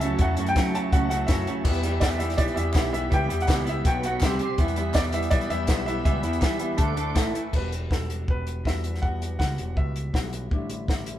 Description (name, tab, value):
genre	indie rock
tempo	163 BPM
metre	4/4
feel	straight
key	E dorian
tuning	A4 = 441 Hz
part	bright upright piano	melody	0.0-10.3 s	A4 to A5	-30 LUFS	equal	none
part	ensemble organ-string	sustained chords	0.0-7.5 s	E4 to D6	-38 LUFS	left 1 dB	ensemble chorus
part	electric guitar through a small old amp	riff	0.0-11.2 s	A2 to C#5	-32 LUFS	left 3 dB	none
part	raw garage guitar	riff	0.0-7.5 s	F#2 to A4	-30 LUFS	right 4 dB	overdrive
part	growling picked electric bass	bass	0.0-11.2 s	E1 to F#3	-29 LUFS	equal	overdrive
part	compact cocktail drum kit	drums	0.0-11.2 s	crash cymbal, hi-hat, kick drum, snare drum	-25 LUFS	equal	none
part	group handclap	percussion	2.0-7.3 s	none	-41 LUFS	left 2 dB	none
room	light reverb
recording	band playing live in one room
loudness	-22 LUFS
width	side -12 dB against mid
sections	0.0-7.5 A section; 7.5-11.2 B section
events	none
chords	0.0 F#m7; 1.7 Em; 3.9 B5; 4.2 C5; 4.6 Em; 6.8 D5; 7.2 A5; 7.5 Emadd9; 10.5 A7sus4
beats	| 0.20 0.57 0.93 1.30 | 1.66 2.03 2.40 2.76 | 3.13 3.49 3.86 4.23 | 4.59 4.96 5.33 5.70 | 6.06 6.43 6.80 7.17 | 7.54 7.91 8.28 8.65 | 9.03 9.40 9.77 10.14 | 10.52 10.89